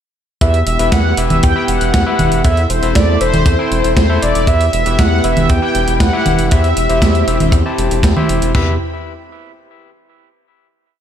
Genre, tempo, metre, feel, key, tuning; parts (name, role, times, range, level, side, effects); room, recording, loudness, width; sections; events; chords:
italo disco; 118 BPM; 4/4; straight; E minor; A4 = 439 Hz
mellow synth brass; melody; 0.4-8.0 s; C5 to G5; -18 LUFS; equal; chorus, digital delay
string machine, full ensemble; sustained chords; 0.4-8.8 s; B3 to B5; -21 LUFS; equal; ensemble chorus
overdriven tine electric piano; stabs; 0.4-8.7 s; E4 to A5; -21 LUFS; left 3 dB; ping-pong delay
round analog bass; bass; 0.4-8.8 s; E1 to E2; -16 LUFS; equal; tube saturation
clean 12-bit digital drum machine; drums; 0.4-8.5 s; congas, hi-hat, snare drum; -19 LUFS; right 2 dB; studio reverb, gated reverb
tight funk drum kit; drums; 0.4-8.7 s; crash cymbal, kick drum, toms; -15 LUFS; equal; studio reverb
light reverb, studio reverb; -11 LUFS; side -9 dB against mid
0.4-8.5 chorus; 8.5-10.6 final chord
0.4 Em; 2.4 Am/E; 4.5 Em; 6.5 C/E; 8.5 Em